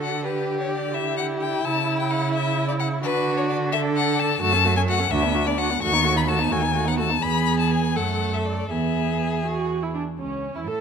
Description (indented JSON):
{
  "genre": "quick classical-period movement for string quartet",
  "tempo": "86 BPM (dotted quarters)",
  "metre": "6/8",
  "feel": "rubato",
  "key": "D major",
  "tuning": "A4 = 439 Hz",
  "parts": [
    { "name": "rich violin", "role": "melody", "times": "0.0-10.8 s", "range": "C#4 to C#6", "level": "-25 LUFS", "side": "left 9 dB", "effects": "none" },
    { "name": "warm violin", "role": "second line", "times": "0.0-10.8 s", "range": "C#4 to A4", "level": "-28 LUFS", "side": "left 1 dB", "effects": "none" },
    { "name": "rich viola", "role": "accompaniment", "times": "0.0-10.8 s", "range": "A3 to A4", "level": "-28 LUFS", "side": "right 5 dB", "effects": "none" },
    { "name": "rich cello", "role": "bass", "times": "0.0-10.8 s", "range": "C#2 to D3", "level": "-26 LUFS", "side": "right 4 dB", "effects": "none" }
  ],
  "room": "moderate recital hall reverb, RT60 1.6 s",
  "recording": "none",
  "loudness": "-20 LUFS",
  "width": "side -6 dB against mid",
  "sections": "0.0-10.2 A section",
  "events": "none",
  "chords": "0.2 Em7/D; 1.6 C#madd11; 3.0 D; 4.4 F#m; 5.1 Bm/D; 5.8 B7/D#; 7.2 E; 8.0 F#m; 8.7 E; 10.2 A/C#",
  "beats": "| 0.24 0.94 | 1.64 2.34 | 3.03 3.72 | 4.42 5.11 | 5.82 6.52 | 7.23 7.96 | 8.70 9.45 | 10.19"
}